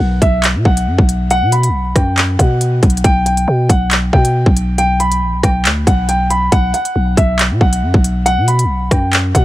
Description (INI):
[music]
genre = hip hop, drill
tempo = 138 BPM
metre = 4/4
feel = half-time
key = unclear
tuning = A4 = 440 Hz
[part]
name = warm concert grand piano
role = melody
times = 0.0-9.4 s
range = E5 to B5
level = -17 LUFS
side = equal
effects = none
[part]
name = growling 808-style bass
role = bass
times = 0.0-9.4 s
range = A#1 to B2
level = -15 LUFS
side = equal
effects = none
[part]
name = drill drum kit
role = drums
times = 0.2-9.4 s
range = handclaps, hi-hat, kick drum, rim click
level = -13 LUFS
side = equal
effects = none
[sound]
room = little or no reverb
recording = none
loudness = -11 LUFS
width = side -15 dB against mid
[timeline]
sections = 0.0-9.4 A section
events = none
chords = 0.0 F#sus4/B; 3.0 G/B; 6.5 B5